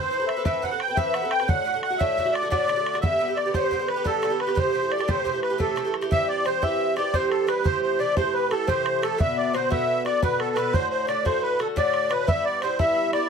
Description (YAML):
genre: celtic folk, Celtic slip jig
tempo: 117 BPM (dotted quarters)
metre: 9/8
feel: straight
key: A dorian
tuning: A4 = 440 Hz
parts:
  - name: musette accordion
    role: melody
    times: 0.0-13.3 s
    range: A4 to G5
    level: -25 LUFS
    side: right 3 dB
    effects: none
  - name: bright wooden flute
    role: second line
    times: 0.0-13.3 s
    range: A4 to G5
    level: -28 LUFS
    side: left 9 dB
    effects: none
  - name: Irish bouzouki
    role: accompaniment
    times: 0.0-13.3 s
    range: G2 to B4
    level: -27 LUFS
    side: right 2 dB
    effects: none
  - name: bodhran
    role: percussion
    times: 0.3-13.2 s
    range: none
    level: -27 LUFS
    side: equal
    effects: none
room: light reverb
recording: close, detailed microphones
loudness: -21 LUFS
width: side -6 dB against mid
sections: 0.0-6.1 A section; 6.1-13.3 B section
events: none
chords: 0.0 Amadd9; 1.5 D; 3.0 G; 4.6 Am7; 6.1 C; 7.7 Am7; 9.2 Bm; 10.7 D; 12.3 Em